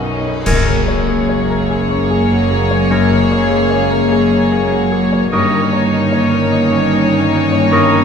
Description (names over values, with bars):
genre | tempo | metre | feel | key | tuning
cinematic, emotional film score for orchestra | 74 BPM | 3/4 | rubato | F# major | A4 = 440 Hz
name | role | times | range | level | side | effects
warm studio violin section | melody | 0.0-8.0 s | C#5 to D#5 | -22 LUFS | left 2 dB | none
rich studio violin section | second line | 0.0-8.0 s | C#4 to G#4 | -22 LUFS | left 3 dB | none
clear baby grand piano | accompaniment | 0.0-8.0 s | B1 to C#5 | -20 LUFS | equal | none
warm studio viola section | accompaniment | 0.0-8.0 s | A#3 to C#4 | -19 LUFS | left 1 dB | none
concert harp | arpeggios | 0.0-8.0 s | F#2 to C#6 | -22 LUFS | left 5 dB | none
warm studio cello section | bass | 0.0-8.0 s | F#2 to B2 | -20 LUFS | right 3 dB | none
warm studio double bass section | bass | 0.0-8.0 s | F#1 to B1 | -21 LUFS | right 4 dB | none
clear oboe | second line | 0.5-8.0 s | C#5 to D#5 | -22 LUFS | right 2 dB | none
mellow clarinet | second line | 0.5-8.0 s | A#4 | -23 LUFS | left 5 dB | none
mellow hollow baroque flute | second line | 0.5-8.0 s | G#5 to C#6 | -22 LUFS | equal | none
mellow French horn section | sustained chords | 0.5-8.0 s | D#3 to C#4 | -21 LUFS | left 5 dB | none
clash cymbals and concert bass drum | percussion | 0.5-2.1 s | none | -22 LUFS | equal | none
room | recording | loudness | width
wet recital hall reverb, RT60 1.4 s | recorded in a church or concert hall | -12 LUFS | side -6 dB against mid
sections
0.5-8.0 A section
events
band accent 0.5-1.3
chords
0.5 F#add9; 5.3 D#7/G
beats
| 0.47 1.29 2.10 | 2.90 3.71 4.52 | 5.33 6.12 6.92 | 7.72